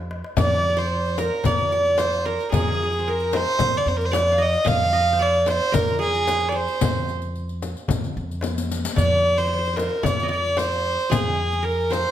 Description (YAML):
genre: Turkish makam ensemble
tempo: 112 BPM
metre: 4/4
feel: straight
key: F makam huseyni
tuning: A4 = 438 Hz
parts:
  - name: upright bass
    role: bass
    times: 0.0-12.0 s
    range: F2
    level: -26 LUFS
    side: equal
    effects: none
  - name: darbuka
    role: percussion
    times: 0.1-12.1 s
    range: none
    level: -30 LUFS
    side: left 2 dB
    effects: none
  - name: warm violin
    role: melody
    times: 0.4-12.1 s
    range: Ab4 to F5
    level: -21 LUFS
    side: right 1 dB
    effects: none
  - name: qanun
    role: second line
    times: 0.4-12.1 s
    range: Ab4 to F5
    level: -28 LUFS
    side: right 3 dB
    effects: none
  - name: frame drum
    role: percussion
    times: 0.4-12.1 s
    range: none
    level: -28 LUFS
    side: left 5 dB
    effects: none
  - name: riq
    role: percussion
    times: 0.4-12.1 s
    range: none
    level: -33 LUFS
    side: left 6 dB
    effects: none
room: wet recital hall reverb, RT60 1.2 s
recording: none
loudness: -19 LUFS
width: side -11 dB against mid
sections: 0.4-12.1 A section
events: drum fill 0.0-0.4, 8.4-9.0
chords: none